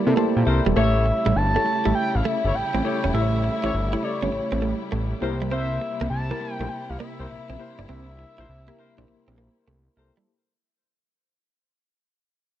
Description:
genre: R&B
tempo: 101 BPM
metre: 4/4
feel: swing 66% on 16ths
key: unclear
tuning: A4 = 440 Hz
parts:
  - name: expressive synth lead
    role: melody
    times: 0.0-9.6 s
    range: C5 to A5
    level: -27 LUFS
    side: equal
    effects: chorus
  - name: soft electric-piano-like synth keys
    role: accompaniment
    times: 0.0-10.3 s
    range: A3 to A5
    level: -28 LUFS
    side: equal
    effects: chorus
  - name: warm studio string section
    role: sustained chords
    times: 0.0-10.2 s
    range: C3 to E4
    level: -34 LUFS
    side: left 3 dB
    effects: none
  - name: direct-recorded clean electric guitar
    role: riff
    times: 0.0-10.3 s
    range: G3 to E4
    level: -28 LUFS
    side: right 6 dB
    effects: wide subtle chorus
  - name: fat analog bass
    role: bass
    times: 0.1-10.1 s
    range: E1 to C3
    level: -24 LUFS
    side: equal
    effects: none
  - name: dark horn section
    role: stabs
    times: 0.5-10.1 s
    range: E4 to C#5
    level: -31 LUFS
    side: left 5 dB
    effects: tape echo
room: small room ambience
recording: dry, close 1970s-style studio recording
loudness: -21 LUFS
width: side -12 dB against mid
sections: 0.8-10.3 A section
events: synth keys fill 0.0-0.8; fade-out 0.8-10.3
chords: 0.0 C7; 0.8 A7; 5.2 C7

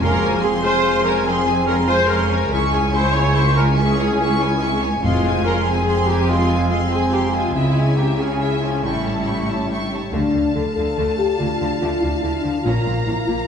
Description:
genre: cinematic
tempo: 95 BPM (dotted quarters)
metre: 12/8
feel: straight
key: F harmonic minor, D minor from 10.1 s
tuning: A4 = 440 Hz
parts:
  - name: clear symphonic violin section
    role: melody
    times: 0.0-13.5 s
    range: Fb5 to Db6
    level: -27 LUFS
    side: left 1 dB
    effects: none
  - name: clear symphonic violin section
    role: second line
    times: 0.0-13.5 s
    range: Ab4 to Ab5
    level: -32 LUFS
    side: left 1 dB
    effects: none
  - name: dark clarinet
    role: second line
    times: 0.0-10.1 s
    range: Ab3 to Fb4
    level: -29 LUFS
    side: equal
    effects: none
  - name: dark cor anglais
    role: second line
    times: 0.0-9.9 s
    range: F3 to F4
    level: -29 LUFS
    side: right 2 dB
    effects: none
  - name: mellow hollow silver concert flute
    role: second line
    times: 0.0-9.9 s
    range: Db5 to Db6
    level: -29 LUFS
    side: equal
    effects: none
  - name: rich symphonic viola section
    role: accompaniment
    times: 0.0-13.4 s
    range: F3 to Db5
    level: -24 LUFS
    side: equal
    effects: none
  - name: dark French horn section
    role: sustained chords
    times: 0.0-13.5 s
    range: Db3 to A4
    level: -24 LUFS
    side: left 3 dB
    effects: none
  - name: concert harp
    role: arpeggios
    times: 0.0-13.5 s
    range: A2 to Ab5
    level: -29 LUFS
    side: left 4 dB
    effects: none
  - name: dark trumpet section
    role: stabs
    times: 0.0-9.9 s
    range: Ab5 to A5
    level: -27 LUFS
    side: equal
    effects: none
  - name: clear studio cello section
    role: bass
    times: 0.0-13.4 s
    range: Db2 to D3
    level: -24 LUFS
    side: right 1 dB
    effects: none
  - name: rich symphonic double bass section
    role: bass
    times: 0.0-13.4 s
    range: F1 to D2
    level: -25 LUFS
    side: right 2 dB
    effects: none
  - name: timpani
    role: percussion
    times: 0.0-0.6, 5.0-5.6 s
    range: F2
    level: -27 LUFS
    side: equal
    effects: none
room: wet recital hall reverb, RT60 1.4 s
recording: recorded in a church or concert hall, nothing above 10.4 kHz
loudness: -16 LUFS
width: side -7 dB against mid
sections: 0.0-10.1 A section; 10.1-13.5 B section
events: none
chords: 0.0 Fm; 2.5 Dbm; 5.0 Fm; 7.5 Dbm; 8.8 A7; 10.1 Dm; 12.7 Bbm

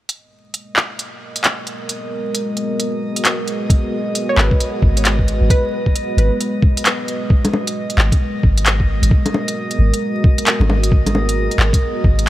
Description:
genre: future garage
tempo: 133 BPM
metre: 4/4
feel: swing 62% on 16ths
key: G# minor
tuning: A4 = 439 Hz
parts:
  - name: deep dark ambient pad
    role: sustained chords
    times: 1.4-12.3 s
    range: G#3 to B4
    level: -23 LUFS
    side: equal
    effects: chorus, built-in reverb, sidechain pumping
  - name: organic electronic drum kit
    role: drums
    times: 0.1-12.3 s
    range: bongos, handclaps, hi-hat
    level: -18 LUFS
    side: equal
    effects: small room ambience
  - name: drifting glass-harmonics texture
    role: texture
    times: 1.0-12.3 s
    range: D#5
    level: -29 LUFS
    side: right 1 dB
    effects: chorus, built-in reverb
  - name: electronic kick drum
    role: drums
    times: 3.7-12.2 s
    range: none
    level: -14 LUFS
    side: equal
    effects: small room ambience
  - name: glassy wavetable pluck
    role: melody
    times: 4.3-6.1 s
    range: B4 to C#5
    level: -24 LUFS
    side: equal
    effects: chorus, analog delay
  - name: soft 808-style bass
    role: bass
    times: 4.4-12.3 s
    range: G#1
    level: -15 LUFS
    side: equal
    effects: sidechain pumping
room: light reverb, digital ambience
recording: vinyl crackle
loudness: -14 LUFS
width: side -15 dB against mid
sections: 0.1-7.3 A section; 7.3-12.3 B section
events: kick drops out 6.9-7.3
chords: 0.1 G#m9

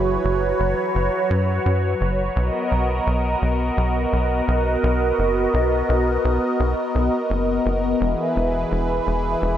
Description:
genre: synthwave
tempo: 85 BPM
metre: 4/4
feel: straight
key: B major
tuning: A4 = 442 Hz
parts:
  - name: phased analog pad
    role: sustained chords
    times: 0.0-9.6 s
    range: E3 to D#5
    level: -20 LUFS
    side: equal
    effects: phaser, chorus
  - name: tight sequencer bass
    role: bass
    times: 0.0-9.6 s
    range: E1 to F#2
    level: -22 LUFS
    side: equal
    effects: none
room: wet huge ambient reverb, RT60 8.5 s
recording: dreamy mix soaked in reverb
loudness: -18 LUFS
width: side -10 dB against mid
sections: 0.0-9.6 A section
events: none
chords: 0.0 F#sus4; 2.4 Bmaj7; 8.0 E

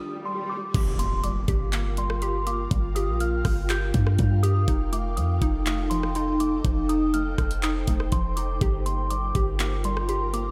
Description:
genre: hip hop, atmospheric cloud-rap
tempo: 122 BPM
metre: 4/4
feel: half-time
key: G minor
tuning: A4 = 439 Hz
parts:
  - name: glassy synth bell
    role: melody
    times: 0.0-10.5 s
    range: C6 to G6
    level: -35 LUFS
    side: equal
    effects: chorus, low-pass filter, tape echo
  - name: swell and impact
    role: sound effects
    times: 0.0-2.7 s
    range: none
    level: -37 LUFS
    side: equal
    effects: none
  - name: ethereal airy pad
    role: sustained chords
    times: 1.8-10.5 s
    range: Eb4 to G5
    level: -33 LUFS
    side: equal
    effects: ensemble chorus, built-in reverb, sidechain pumping
  - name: hollow square pluck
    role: arpeggios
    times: 0.7-10.5 s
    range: F3 to G4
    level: -36 LUFS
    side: equal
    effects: chorus, low-pass filter, tape echo
  - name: warm 808-style bass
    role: bass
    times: 0.7-10.5 s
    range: F1 to G2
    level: -28 LUFS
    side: equal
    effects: none
  - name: trap drum kit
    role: drums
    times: 0.7-10.4 s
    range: crash cymbal, handclaps, hi-hat, kick drum, rim click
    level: -31 LUFS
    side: equal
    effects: none
room: moderate lush hall reverb, RT60 1.7 s, digital ambience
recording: dreamy mix soaked in reverb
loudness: -25 LUFS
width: mono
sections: 0.7-10.5 A section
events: swell 0.0-0.7; stop 0.0-0.7; impact 0.7-2.7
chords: 0.0 F7(no3) (rootless); 0.7 Gm7; 4.7 F9; 8.6 Gm7

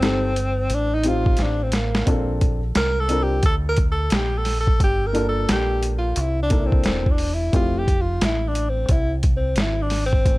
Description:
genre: hip hop, jazz-hop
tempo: 88 BPM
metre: 4/4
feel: swing 63% on 16ths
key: unclear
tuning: A4 = 440 Hz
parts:
  - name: breathy tenor saxophone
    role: melody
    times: 0.0-10.4 s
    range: Bb3 to Bb4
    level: -24 LUFS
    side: equal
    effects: none
  - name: dark upright piano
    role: accompaniment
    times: 0.0-7.8 s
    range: A3 to C5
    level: -26 LUFS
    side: left 2 dB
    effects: none
  - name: deep dub fingered electric bass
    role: bass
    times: 0.0-10.4 s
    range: E1 to D2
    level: -24 LUFS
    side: equal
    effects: none
  - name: boom bap sampler-style drum kit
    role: drums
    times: 0.0-10.4 s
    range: hi-hat, kick drum, snare drum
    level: -21 LUFS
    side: equal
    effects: none
room: small room reverb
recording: dark, warm production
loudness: -18 LUFS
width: side -20 dB against mid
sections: 0.0-10.4 A section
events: tenor saxophone solo 0.0-10.4; drum fill 1.4-2.1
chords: 0.0 F7 (rootless); 2.1 Bbmaj7; 4.8 Gm7; 6.2 C13; 7.5 Fmaj7

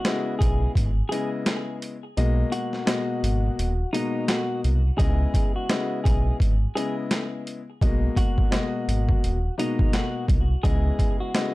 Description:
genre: hip hop, boom-bap hip-hop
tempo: 85 BPM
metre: 4/4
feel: swing 60% on 16ths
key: G# minor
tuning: A4 = 438 Hz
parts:
  - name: clean electric guitar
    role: melody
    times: 0.0-11.5 s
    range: D#4 to G#4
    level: -32 LUFS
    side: equal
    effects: high-pass filter, low-pass filter, digital delay
  - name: boom bap sampler-style drum kit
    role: drums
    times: 0.0-11.5 s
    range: hi-hat, kick drum, snare drum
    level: -23 LUFS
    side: equal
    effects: none
  - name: warm grand piano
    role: accompaniment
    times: 0.1-11.5 s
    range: B2 to D#5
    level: -29 LUFS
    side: left 3 dB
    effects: cassette tape, high-pass filter, low-pass filter
  - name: sub bass with octave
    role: bass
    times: 0.4-10.9 s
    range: D#1 to C#2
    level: -23 LUFS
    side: equal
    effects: none
room: light reverb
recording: dark, warm production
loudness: -21 LUFS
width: side -19 dB against mid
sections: 0.0-11.5 A section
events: kick muted 2.2-5.0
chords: 0.0 C#m7; 2.2 G#m7; 5.0 C#m7; 7.8 G#m7; 10.6 C#m7

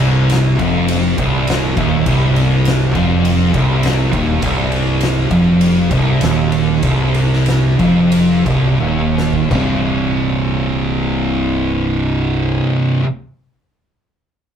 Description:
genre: stoner and doom metal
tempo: 83-102 BPM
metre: 4/4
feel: straight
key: C minor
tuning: A4 = 439 Hz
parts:
  - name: thick fuzz guitar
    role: riff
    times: 0.0-13.0 s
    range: C2 to C3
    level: -18 LUFS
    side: left 4 dB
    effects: distortion
  - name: thick fuzz guitar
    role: riff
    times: 0.0-13.0 s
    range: C2 to C3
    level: -16 LUFS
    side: right 4 dB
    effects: distortion
  - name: growling fingered electric bass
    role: bass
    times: 0.0-12.6 s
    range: C1 to F1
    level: -22 LUFS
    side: left 1 dB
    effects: overdrive
  - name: oversized low-tuned drum kit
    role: drums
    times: 0.0-9.7 s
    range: kick drum, ride cymbal, snare drum, splash cymbal, toms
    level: -22 LUFS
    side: left 1 dB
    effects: none
room: moderate small room reverb, RT60 0.5 s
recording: rough rehearsal-room recording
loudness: -13 LUFS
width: side -8 dB against mid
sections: 0.0-9.5 A section; 9.5-12.4 B section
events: slowing down 4.4-9.5; drum fill 8.8-9.5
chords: 0.0 Cm; 9.5 C5

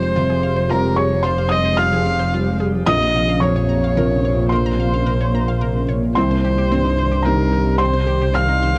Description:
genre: neoclassical piano and strings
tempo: 110 BPM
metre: 3/4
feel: rubato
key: unclear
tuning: A4 = 441 Hz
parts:
  - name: muted violin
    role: melody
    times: 0.0-8.8 s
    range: Bb4 to F5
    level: -24 LUFS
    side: equal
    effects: none
  - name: muted cello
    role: second line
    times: 0.0-8.8 s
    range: F2 to Ab3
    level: -29 LUFS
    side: equal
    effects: none
  - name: felt-muted upright piano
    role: accompaniment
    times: 0.0-8.8 s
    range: Bb1 to F6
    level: -23 LUFS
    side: equal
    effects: none
  - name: granular cloud pad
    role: sustained chords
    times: 0.0-8.8 s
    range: Bb3 to C5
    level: -31 LUFS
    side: equal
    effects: none
  - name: analog pluck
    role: arpeggios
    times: 0.0-8.8 s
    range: C4 to Bb5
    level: -31 LUFS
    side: equal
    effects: chorus
  - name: muted double bass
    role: bass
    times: 0.0-8.8 s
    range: F1 to C2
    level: -23 LUFS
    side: equal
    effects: none
room: light reverb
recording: dry, close 1970s-style studio recording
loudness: -18 LUFS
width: mono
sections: 0.0-8.8 A section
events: none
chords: 0.0 Fmadd9; 2.9 Bbmadd9; 6.2 Cm

